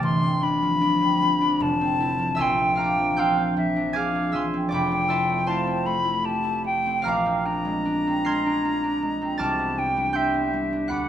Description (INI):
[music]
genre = classical, impressionist duo for flute and harp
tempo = 77 BPM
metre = 3/4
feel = uneven beats, rubato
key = unclear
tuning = A4 = 440 Hz
[part]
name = silver concert flute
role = melody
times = 0.0-11.1 s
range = E5 to C6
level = -24 LUFS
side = left 3 dB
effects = none
[part]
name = concert harp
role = accompaniment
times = 0.0-11.1 s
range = F1 to C7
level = -23 LUFS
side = right 1 dB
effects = none
[sound]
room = light reverb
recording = close, detailed microphones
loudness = -21 LUFS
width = side -10 dB against mid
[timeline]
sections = 0.0-11.1 A section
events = none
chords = 0.0 G9sus4; 1.6 Fmaj9; 2.4 Bb9; 4.7 Fmaj9; 7.1 Bb9; 9.4 Cmaj9